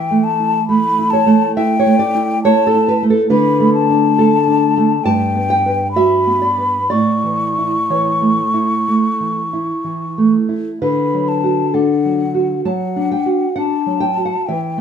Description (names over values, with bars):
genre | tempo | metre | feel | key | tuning
romantic duo for flute and classical guitar | 60-70 BPM | 4/4 | rubato | D major | A4 = 440 Hz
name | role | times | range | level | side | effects
mellow hollow concert flute | melody | 0.0-14.8 s | F#5 to C#6 | -18 LUFS | left 3 dB | none
nylon-string guitar | accompaniment | 0.0-14.8 s | G2 to A5 | -15 LUFS | right 2 dB | none
room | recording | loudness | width
moderate studio reverb, RT60 0.6 s | none | -13 LUFS | side -7 dB against mid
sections
0.0-14.8 A section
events
none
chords
0.0 A5/E; 3.3 D5; 5.0 Gmaj7; 6.9 A; 10.8 D